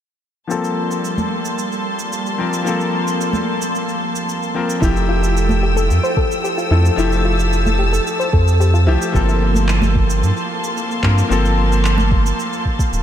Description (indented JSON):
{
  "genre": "sunset chillout",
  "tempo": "111 BPM",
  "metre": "4/4",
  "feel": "straight",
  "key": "G dorian",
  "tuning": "A4 = 440 Hz",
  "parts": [
    { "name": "bright grand piano", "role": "accompaniment", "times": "0.5-13.0 s", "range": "F3 to Bb4", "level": "-21 LUFS", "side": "moving between left 4 dB and right 4 dB", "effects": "auto-pan, low-pass filter, ping-pong delay" },
    { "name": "rich symphonic string section", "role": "sustained chords", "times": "0.5-13.0 s", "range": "G3 to E6", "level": "-23 LUFS", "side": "left 1 dB", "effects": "none" },
    { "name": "electronic shaker and handclaps", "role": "drums", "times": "0.5-13.0 s", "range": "none", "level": "-30 LUFS", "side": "right 3 dB", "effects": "none" },
    { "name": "congas", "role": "percussion", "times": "1.2-12.1 s", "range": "none", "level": "-27 LUFS", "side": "right 1 dB", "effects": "none" },
    { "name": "soft round pluck", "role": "arpeggios", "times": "4.8-9.0 s", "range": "E4 to C5", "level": "-24 LUFS", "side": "left 2 dB", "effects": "chorus, ping-pong delay" },
    { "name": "round analog bass", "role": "bass", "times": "4.8-13.0 s", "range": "D1 to G2", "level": "-16 LUFS", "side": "equal", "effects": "none" },
    { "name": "electronic kick drum", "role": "drums", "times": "4.8-12.9 s", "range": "none", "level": "-18 LUFS", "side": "equal", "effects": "none" }
  ],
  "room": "moderate huge ambient reverb, RT60 7.6 s",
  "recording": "dreamy mix soaked in reverb",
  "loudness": "-15 LUFS",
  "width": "side -10 dB against mid",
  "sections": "0.5-9.1 A section; 9.1-13.0 B section",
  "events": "filter sweep on grand piano 0.5-9.1",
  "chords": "0.5 Gm11; 4.8 Fmaj9; 9.1 Gm11"
}